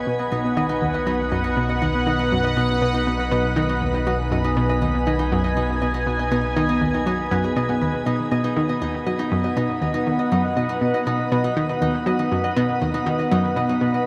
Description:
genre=ambient, sequencer-driven space music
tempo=120 BPM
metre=4/4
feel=straight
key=unclear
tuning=A4 = 438 Hz
part: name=sweeping resonant pad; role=sustained chords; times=0.0-14.1 s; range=B3 to G#5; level=-26 LUFS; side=equal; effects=chorus
part: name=fat analog bass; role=bass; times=0.0-8.0 s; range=B1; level=-29 LUFS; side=equal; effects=none
part: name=analog pluck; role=riff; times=0.1-13.9 s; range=D#2 to F#3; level=-26 LUFS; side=equal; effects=chorus, tape echo
part: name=concert harp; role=arpeggios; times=0.2-14.1 s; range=B3 to D#5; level=-29 LUFS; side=equal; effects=tape echo
room=wet shimmer reverb, RT60 8.8 s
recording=none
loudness=-22 LUFS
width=mono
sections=0.0-8.1 A section; 8.1-14.1 B section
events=filter sweep on synth arpeggio sound 0.0-8.1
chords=0.0 B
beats=| 0.07 0.57 1.07 1.57 | 2.07 2.57 3.07 3.57 | 4.07 4.57 5.07 5.57 | 6.07 6.57 7.07 7.57 | 8.07 8.57 9.07 9.57 | 10.07 10.57 11.07 11.57 | 12.07 12.57 13.07 13.57

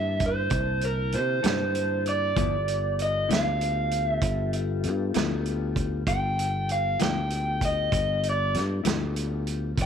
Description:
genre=slow blues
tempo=65 BPM (dotted quarters)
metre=12/8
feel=straight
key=unclear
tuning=A4 = 436 Hz
part: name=raw garage guitar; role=melody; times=0.0-9.9 s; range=Bb4 to G5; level=-27 LUFS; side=right 1 dB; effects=overdrive
part: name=mellow tonewheel organ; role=sustained chords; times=0.0-9.9 s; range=D3 to A5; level=-35 LUFS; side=left 12 dB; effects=slow rotary speaker
part: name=fingered electric bass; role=bass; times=0.0-9.9 s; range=G1 to C3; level=-29 LUFS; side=equal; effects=none
part: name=vintage drum kit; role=drums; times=0.2-9.9 s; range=hi-hat, kick drum, snare drum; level=-30 LUFS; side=right 3 dB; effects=none
part: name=mellow electric guitar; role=accompaniment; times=1.4-9.0 s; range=G2 to A4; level=-33 LUFS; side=left 13 dB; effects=tremolo
room=moderate spring reverb, RT60 2.4 s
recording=1960s-style stereo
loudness=-24 LUFS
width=side -8 dB against mid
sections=0.0-9.9 A section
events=none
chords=0.0 C13; 2.4 G13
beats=0.52 1.44 | 2.37 3.29 4.22 5.15 | 6.07 7.00 7.92 8.85 | 9.77

